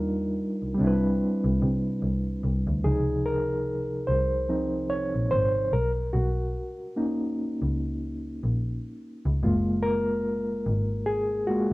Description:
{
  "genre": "lo-fi hip hop",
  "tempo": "73 BPM",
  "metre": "4/4",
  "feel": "swing 57% on 16ths",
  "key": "Db major",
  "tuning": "A4 = 441 Hz",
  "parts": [
    { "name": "mellow reed electric piano", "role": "accompaniment", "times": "0.0-11.7 s", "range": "C3 to Db5", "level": "-26 LUFS", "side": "equal", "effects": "fast tremolo, plate reverb" },
    { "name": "warm double bass", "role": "bass", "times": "0.0-11.7 s", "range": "Gb1 to C3", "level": "-28 LUFS", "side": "equal", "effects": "none" }
  ],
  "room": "moderate small room ambience, RT60 0.5 s",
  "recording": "cassette tape",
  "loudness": "-24 LUFS",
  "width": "side -20 dB against mid",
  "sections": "0.0-2.8 A section; 2.8-11.7 B section",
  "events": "reed electric piano solo 2.8-11.7",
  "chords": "0.0 Ebmaj9; 0.8 Cmaj9; 2.8 Dbmaj9; 5.7 Cbmaj9; 9.4 Gbmaj9"
}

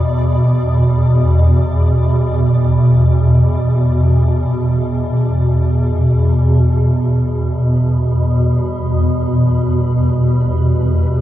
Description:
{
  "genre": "dark ambient drone",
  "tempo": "free time",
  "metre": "none",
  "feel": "none",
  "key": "unclear",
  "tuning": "A4 = 440 Hz",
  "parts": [
    { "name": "swarming drone", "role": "drone", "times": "0.0-11.2 s", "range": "E2 to B2", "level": "-12 LUFS", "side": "equal", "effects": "built-in reverb" },
    { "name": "flickering grainy texture", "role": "texture", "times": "0.0-11.2 s", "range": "B4 to D5", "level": "-34 LUFS", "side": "equal", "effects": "built-in reverb" },
    { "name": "deep dark ambient pad", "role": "sustained chords", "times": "7.6-11.2 s", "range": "B3 to E5", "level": "-30 LUFS", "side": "left 1 dB", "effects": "none" }
  ],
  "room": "moderate huge ambient reverb, RT60 8.4 s",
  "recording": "dark, warm production",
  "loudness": "-12 LUFS",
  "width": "side -13 dB against mid",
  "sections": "0.0-6.5 A section; 6.5-11.2 B section",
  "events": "fade-out on synth texture 0.0-6.5",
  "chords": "0.0 E5; 6.5 Em"
}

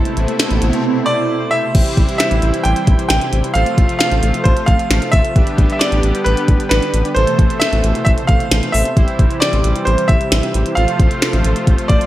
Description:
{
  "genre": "synth-pop",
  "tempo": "133 BPM",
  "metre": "4/4",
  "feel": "straight",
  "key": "unclear",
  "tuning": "A4 = 440 Hz",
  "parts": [
    { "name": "bright concert grand piano", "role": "melody", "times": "0.0-12.1 s", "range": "B4 to A5", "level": "-20 LUFS", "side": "right 1 dB", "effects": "none" },
    { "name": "analog synth brass", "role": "accompaniment", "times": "0.0-12.1 s", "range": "E3 to C5", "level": "-23 LUFS", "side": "right 2 dB", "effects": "chorus" },
    { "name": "brassy analog pad", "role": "sustained chords", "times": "0.0-12.1 s", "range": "B2 to G4", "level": "-22 LUFS", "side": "left 2 dB", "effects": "chorus" },
    { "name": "round analog bass", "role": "bass", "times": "0.0-12.0 s", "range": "A1", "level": "-16 LUFS", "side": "equal", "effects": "none" },
    { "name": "riser", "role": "sound effects", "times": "0.0-0.8 s", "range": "none", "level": "-22 LUFS", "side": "right 5 dB", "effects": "none" },
    { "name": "minimal click drum kit", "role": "drums", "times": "0.1-12.1 s", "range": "crash cymbal, hi-hat, kick drum, snare drum", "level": "-16 LUFS", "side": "equal", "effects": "gated reverb" }
  ],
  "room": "light reverb, digital ambience",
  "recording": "none",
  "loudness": "-12 LUFS",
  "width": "side -14 dB against mid",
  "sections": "0.0-1.7 A section; 1.7-12.1 B section",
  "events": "riser 0.0-1.7",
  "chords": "0.0 Amadd9; 1.7 C/A; 3.6 F/A; 5.4 G/A; 7.2 Amadd9; 9.0 C/A; 10.8 F/A"
}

